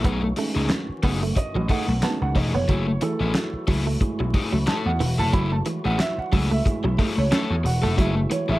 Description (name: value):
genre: funk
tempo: 91 BPM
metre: 4/4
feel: swing 56% on 16ths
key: F# dorian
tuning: A4 = 441 Hz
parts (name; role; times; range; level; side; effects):
- overdriven electric guitar; accompaniment; 0.0-8.6 s; A3 to A4; -28 LUFS; left 3 dB; none
- tonewheel organ; sustained chords; 0.0-8.6 s; D#3 to F#4; -36 LUFS; equal; fast rotary speaker, overdrive
- dark upright piano; stabs; 0.0-8.6 s; G#3 to B5; -29 LUFS; right 3 dB; none
- vintage slap bass; bass; 0.0-8.6 s; E1 to E2; -24 LUFS; equal; none
- cloth-damped thuddy drum kit; drums; 0.0-8.5 s; handclaps, hi-hat, kick drum, snare drum; -25 LUFS; equal; none
- direct-recorded clean electric guitar; riff; 0.1-8.4 s; E3 to C#4; -30 LUFS; right 4 dB; spring reverb
room: moderate small room reverb, RT60 0.5 s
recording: vinyl crackle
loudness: -20 LUFS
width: side -17 dB against mid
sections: 0.0-8.6 A section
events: upright piano solo 0.0-8.6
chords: 0.0 B13; 2.7 F#m9